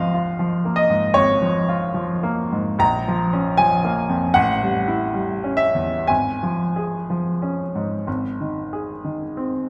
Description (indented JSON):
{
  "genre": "classical, romantic nocturne for solo piano",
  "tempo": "59-81 BPM",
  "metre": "4/4",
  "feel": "rubato",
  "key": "Db major",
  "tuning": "A4 = 438 Hz",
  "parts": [
    { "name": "clear baby grand piano", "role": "solo", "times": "0.0-9.7 s", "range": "Ab1 to Bb5", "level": "-21 LUFS", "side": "equal", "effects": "none" }
  ],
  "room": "wet recital hall reverb, RT60 1.8 s",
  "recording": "none",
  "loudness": "-21 LUFS",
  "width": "mono",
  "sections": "0.0-9.7 A section",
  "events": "none",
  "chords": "0.0 Bbm7/Ab; 2.8 Bbm; 4.3 A7; 6.1 Db/Ab; 8.1 Ab"
}